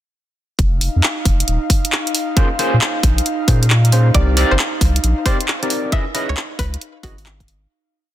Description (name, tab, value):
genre	UK garage, two-step garage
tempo	135 BPM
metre	4/4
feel	swing 66% on 16ths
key	unclear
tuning	A4 = 438 Hz
part	airy breathy pad	sustained chords	0.6-7.7 s	Eb4 to F5	-26 LUFS	right 1 dB	chorus, sidechain pumping
part	soft dub sub bass	bass	0.6-7.7 s	Eb1 to Bb2	-15 LUFS	equal	none
part	electronic kick drum	drums	0.6-7.5 s	none	-17 LUFS	equal	none
part	garage drum kit	drums	0.6-7.6 s	handclaps, hi-hat	-20 LUFS	equal	none
part	overdriven tine electric piano	stabs	2.4-7.1 s	Bb3 to Eb5	-22 LUFS	equal	analog chorus, ping-pong delay
part	string-like resonator pluck	melody	4.1-7.2 s	Gb4 to Fb5	-27 LUFS	equal	chorus, cassette tape, digital delay
room	digital ambience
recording	dense, heavily limited modern master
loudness	-14 LUFS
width	side -13 dB against mid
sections	0.6-7.7 groove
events	fade-out 5.3-7.7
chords	0.6 Ebsus2; 2.4 Bbm9; 4.1 Cm9; 5.9 Dbm9